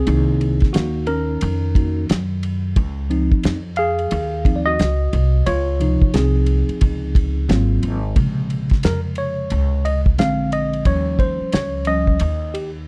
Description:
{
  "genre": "hip hop, jazz-hop",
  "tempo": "89 BPM",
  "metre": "4/4",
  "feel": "swing 62% on 16ths",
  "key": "Bb minor",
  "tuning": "A4 = 440 Hz",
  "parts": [
    { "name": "mellow tine electric piano", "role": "accompaniment", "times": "0.0-12.7 s", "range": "C3 to F5", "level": "-24 LUFS", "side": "equal", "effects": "none" },
    { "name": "upright bass", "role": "bass", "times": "0.0-12.8 s", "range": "Ab1 to Gb2", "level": "-23 LUFS", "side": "equal", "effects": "none" },
    { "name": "cloth-damped thuddy drum kit", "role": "drums", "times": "0.1-12.7 s", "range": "hi-hat, kick drum, ride cymbal, snare drum", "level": "-20 LUFS", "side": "equal", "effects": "none" }
  ],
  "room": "light reverb",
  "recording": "dark, warm production",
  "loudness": "-19 LUFS",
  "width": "mono",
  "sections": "0.0-8.2 A section; 8.2-12.9 B section",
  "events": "tine electric piano solo 0.0-8.2, 8.2-12.9",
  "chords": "0.0 Cm7b5; 2.8 Dbmaj7; 7.5 Ab13; 8.2 Bbm9; 10.2 Bb9; 10.9 Eb9",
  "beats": "| 0.07 0.74 1.42 2.09 | 2.77 3.44 4.12 4.79 | 5.46 6.14 6.81 7.49 | 8.16 8.83 9.51 10.18 | 10.86 11.53 12.21"
}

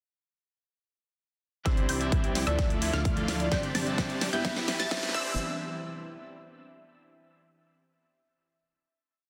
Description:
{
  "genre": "EDM, festival progressive house",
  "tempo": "129 BPM",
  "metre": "4/4",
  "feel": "straight",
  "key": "C major",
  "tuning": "A4 = 440 Hz",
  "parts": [
    { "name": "electric guitar at the edge of break-up", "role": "accompaniment", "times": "1.6-5.3 s", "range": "F3 to E5", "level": "-38 LUFS", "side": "equal", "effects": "sidechain pumping, tape echo" },
    { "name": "lush unison pad", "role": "sustained chords", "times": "1.7-5.4 s", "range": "E3 to G4", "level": "-44 LUFS", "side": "equal", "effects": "none" },
    { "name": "unison pluck", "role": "arpeggios", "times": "1.7-5.3 s", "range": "E6 to A6", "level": "-40 LUFS", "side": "equal", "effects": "cassette tape, sidechain pumping, tape echo" },
    { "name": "dense compressed supersaw", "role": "riff", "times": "1.7-5.3 s", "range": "A3 to A5", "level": "-37 LUFS", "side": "equal", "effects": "sidechain pumping, low-pass filter, tape echo" },
    { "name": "fat analog bass", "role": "bass", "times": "1.7-5.4 s", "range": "E1 to D2", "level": "-38 LUFS", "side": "equal", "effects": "sidechain pumping" },
    { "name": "big-room dance drum kit", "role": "drums", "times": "1.7-5.1 s", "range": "hi-hat, snare drum", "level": "-37 LUFS", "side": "equal", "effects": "none" },
    { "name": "electronic kick drum", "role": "drums", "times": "1.7-5.2 s", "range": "none", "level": "-31 LUFS", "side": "equal", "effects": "none" },
    { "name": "riser", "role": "sound effects", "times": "3.7-5.4 s", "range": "none", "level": "-43 LUFS", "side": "equal", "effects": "none" },
    { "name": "vibraphone with soft mallets", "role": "melody", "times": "2.5-5.3 s", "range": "D5 to E5", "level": "-40 LUFS", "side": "equal", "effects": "tape echo" }
  ],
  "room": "moderate lush hall reverb, RT60 2.2 s",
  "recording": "dense, heavily limited modern master, high-pass filter",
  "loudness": "-29 LUFS",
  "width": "mono",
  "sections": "1.7-5.4 build; 5.4-7.2 final hit",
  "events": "build-up 1.7-5.4; drum fill 1.7-5.4; filter sweep on supersaw synth 1.7-5.4; filter sweep on synth pluck 1.7-5.4; filter sweep 1.7-5.4",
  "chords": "1.7 Cadd9; 2.6 Dmadd9; 3.5 Gsus4; 4.4 Em; 5.1 Cadd9; 5.4 N.C.",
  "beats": "| 1.66 2.12 2.59 3.05 | 3.52 3.98 4.45 4.91 | 5.38"
}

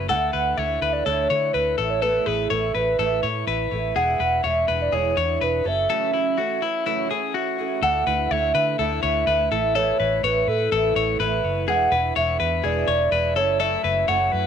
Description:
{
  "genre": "indie pop",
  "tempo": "124 BPM",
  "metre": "4/4",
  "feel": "straight",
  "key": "unclear",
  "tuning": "A4 = 440 Hz",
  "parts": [
    { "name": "fingerpicked twelve-string acoustic guitar", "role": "accompaniment", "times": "0.0-14.5 s", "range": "E2 to F#4", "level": "-28 LUFS", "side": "right 13 dB", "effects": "none" },
    { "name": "clean electric guitar", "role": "arpeggios", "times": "0.0-14.5 s", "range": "E4 to C#5", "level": "-25 LUFS", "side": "left 12 dB", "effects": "tape echo" },
    { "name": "vintage muted fingered electric bass", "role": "bass", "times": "0.0-14.5 s", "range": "E1 to D3", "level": "-28 LUFS", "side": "equal", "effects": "none" },
    { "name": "hollow clarinet-like synth lead", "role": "melody", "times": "0.1-14.5 s", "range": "G#4 to F#5", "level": "-23 LUFS", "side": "equal", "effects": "chorus" }
  ],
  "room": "light reverb, digital ambience",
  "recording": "1960s-style stereo with parts hard left and right",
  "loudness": "-19 LUFS",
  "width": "side -8 dB against mid",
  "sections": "0.0-7.8 A section; 7.8-14.5 B section",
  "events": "break 5.9-7.8",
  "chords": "0.1 Dsus2; 1.8 Asus2; 4.0 E7; 5.7 F#m7; 7.8 Dsus2; 9.5 Asus2; 11.7 E7; 13.4 F#m7",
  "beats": "| 0.09 0.57 1.06 1.54 | 2.02 2.51 2.99 3.48 | 3.96 4.44 4.93 5.41 | 5.89 6.38 6.86 7.34 | 7.83 8.31 8.79 9.27 | 9.76 10.24 10.72 11.20 | 11.68 12.16 12.64 13.12 | 13.61 14.09"
}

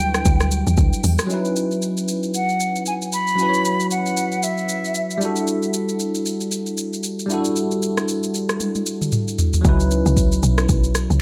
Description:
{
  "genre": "amapiano",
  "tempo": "115 BPM",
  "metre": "4/4",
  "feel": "swing 58% on 16ths",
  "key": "C# minor",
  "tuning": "A4 = 440 Hz",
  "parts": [
    { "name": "hollow concert flute", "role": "melody", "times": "0.0-5.2 s", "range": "E5 to B5", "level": "-26 LUFS", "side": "equal", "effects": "tape echo" },
    { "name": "bell-like tine electric piano", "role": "accompaniment", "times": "0.0-11.2 s", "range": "F#3 to C#5", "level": "-25 LUFS", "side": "equal", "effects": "analog chorus" },
    { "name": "woody log drum bass", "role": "bass", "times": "0.0-1.2, 9.6-11.2 s", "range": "B1 to E2", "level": "-20 LUFS", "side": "equal", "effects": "none" },
    { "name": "afro-pop drum kit", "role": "drums", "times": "0.1-11.2 s", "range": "hi-hat, kick drum, rim click, shaker, toms", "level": "-24 LUFS", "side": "equal", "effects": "none" }
  ],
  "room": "moderate plate reverb, RT60 1.2 s",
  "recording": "dreamy mix soaked in reverb",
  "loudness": "-20 LUFS",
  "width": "mono",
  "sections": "0.0-1.3 A section; 1.3-9.6 B section; 9.6-11.2 A section",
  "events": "drop 0.0-1.3, 9.6-11.2; drum fill 8.6-9.6",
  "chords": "0.0 Em11; 1.3 C#m11; 5.2 Em11; 9.6 C#m11",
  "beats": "0.26 0.78 | 1.30 1.82 2.34 2.86 | 3.38 3.91 4.43 4.95 | 5.47 5.99 6.52 7.04 | 7.56 8.08 8.60 9.12 | 9.65 10.17 10.69 11.21"
}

